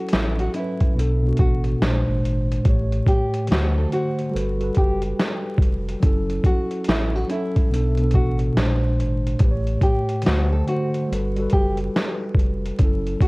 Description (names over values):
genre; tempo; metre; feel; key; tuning
lo-fi hip hop; 71 BPM; 4/4; swing 63% on 16ths; unclear; A4 = 440 Hz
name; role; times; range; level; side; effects
nylon-string guitar; melody; 0.0-13.3 s; E4 to A4; -28 LUFS; equal; low-pass filter, analog delay
mellow tine electric piano; accompaniment; 0.0-13.3 s; A2 to C#5; -24 LUFS; equal; medium stereo tremolo, low-pass filter
warm sub bass; bass; 0.1-13.2 s; E#1 to D2; -24 LUFS; equal; tube saturation
boom bap sampler-style drum kit; drums; 0.1-13.3 s; hi-hat, kick drum, snare drum; -20 LUFS; equal; none
room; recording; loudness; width
little or no reverb; worn, warbling old tape, cassette tape, vinyl crackle, warbly pitch drift; -18 LUFS; side -25 dB against mid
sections
0.0-13.3 A section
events
none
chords
0.0 F#m7; 1.0 Bm7; 1.8 A#9; 2.7 A7; 3.5 D7; 4.3 Gmaj9; 6.0 F#m7; 7.7 Bm7; 8.6 A#9; 9.4 A7; 10.3 D7; 11.1 Gmaj9